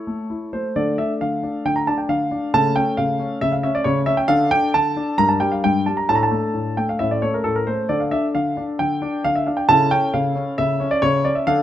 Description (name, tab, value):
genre	classical-period piano sonatina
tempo	134 BPM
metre	4/4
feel	straight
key	D minor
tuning	A4 = 440 Hz
part	warm grand piano	solo	0.0-11.6 s	G2 to Bb5	-18 LUFS	equal	none
room	light reverb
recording	close, detailed microphones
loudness	-18 LUFS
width	side -12 dB against mid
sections	0.7-11.6 A section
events	none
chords	0.0 A; 0.7 Dm; 2.5 A/C#; 4.3 D5; 5.2 Gm; 6.1 D5/A; 7.0 A; 7.9 Dm; 9.7 A/C#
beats	0.29 | 0.75 1.20 1.65 2.09 | 2.54 2.98 3.42 3.86 | 4.30 4.74 5.18 5.63 | 6.08 6.54 6.99 7.45 | 7.90 8.35 8.80 9.25 | 9.69 10.14 10.58 11.03 | 11.47